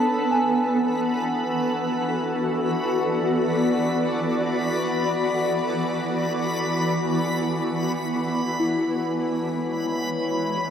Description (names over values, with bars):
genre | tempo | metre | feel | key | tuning
ambient | free time | none | none | unclear | A4 = 440 Hz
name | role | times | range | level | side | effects
shimmering ambient pad | sustained chords | 0.0-10.7 s | E3 to D5 | -22 LUFS | equal | chorus, built-in reverb
large celesta | arpeggios | 0.0-10.7 s | E4 to A5 | -28 LUFS | left 1 dB | tape echo
backwards swelling texture | texture | 0.0-10.7 s | B5 | -31 LUFS | left 1 dB | built-in reverb
room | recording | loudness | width
wet lush hall reverb, RT60 2.6 s | none | -21 LUFS | side -8 dB against mid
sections
0.0-10.7 A section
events
none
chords
0.0 E7sus4; 8.9 E6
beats
free time